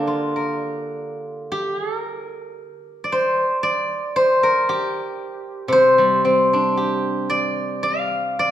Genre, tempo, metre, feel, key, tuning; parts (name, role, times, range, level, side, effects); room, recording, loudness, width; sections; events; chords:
chinese traditional, Chinese solo plucked strings; 57 BPM; 2/4; uneven beats, rubato; D jue mode; A4 = 440 Hz
steel-string zither; solo; 0.0-8.5 s; C3 to F5; -18 LUFS; equal
wet recital hall reverb, RT60 1.6 s; recorded in a church or concert hall; -17 LUFS; side -11 dB against mid
0.0-1.5 A section; 1.5-8.5 B section